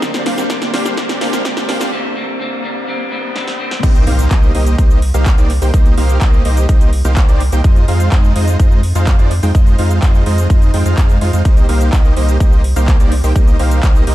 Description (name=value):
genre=EDM, festival progressive house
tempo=126 BPM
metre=4/4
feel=straight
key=C minor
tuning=A4 = 441 Hz
part: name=clean electric guitar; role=accompaniment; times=0.0-3.8 s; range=D3 to C4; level=-22 LUFS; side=left 1 dB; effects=sidechain pumping, ping-pong delay
part: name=dense compressed supersaw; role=riff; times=0.0-14.1 s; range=Ab3 to G5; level=-19 LUFS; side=right 1 dB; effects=sidechain pumping, ping-pong delay
part: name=big-room dance drum kit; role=drums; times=0.0-14.1 s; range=crash cymbal, handclaps, hi-hat, shaker, snare drum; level=-24 LUFS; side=equal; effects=none
part: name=electronic kick drum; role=drums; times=0.0-13.9 s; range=none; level=-10 LUFS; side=equal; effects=high-pass filter on kick
part: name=riser and impact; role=sound effects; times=0.0-5.7 s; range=none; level=-26 LUFS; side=equal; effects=none
part: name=saturated sub bass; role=bass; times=3.8-14.1 s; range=C2 to F2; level=-15 LUFS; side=equal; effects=sidechain pumping
room=little or no reverb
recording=dark, warm production, high-pass filter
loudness=-11 LUFS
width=side -15 dB against mid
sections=0.0-3.8 A section; 3.8-14.1 B section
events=build-up 0.0-3.8; drum fill 0.0-1.9, 3.4-3.8; riser 0.0-3.8; break 1.9-3.8; drop 3.8-14.1; impact 3.8-5.7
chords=0.0 Gm; 3.8 Cm7; 7.6 Fm7; 11.5 Cm7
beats=| 0.02 0.50 0.98 1.45 | 1.93 2.40 2.88 3.36 | 3.83 4.31 4.79 5.26 | 5.74 6.21 6.69 7.17 | 7.64 8.12 8.60 9.07 | 9.55 10.02 10.50 10.98 | 11.45 11.93 12.40 12.88 | 13.36 13.83